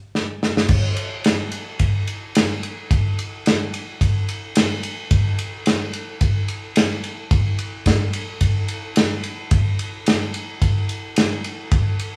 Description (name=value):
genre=blues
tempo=109 BPM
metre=4/4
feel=swing 54% on 16ths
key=none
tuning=none
part: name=warm soul drum kit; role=drums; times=0.2-12.1 s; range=crash cymbal, kick drum, ride cymbal, snare drum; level=-21 LUFS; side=equal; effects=none
room=wet studio reverb, RT60 1.0 s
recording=band playing live in one room, studio ambience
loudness=-21 LUFS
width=mono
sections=0.7-12.2 A section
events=drum fill 0.1-0.7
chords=none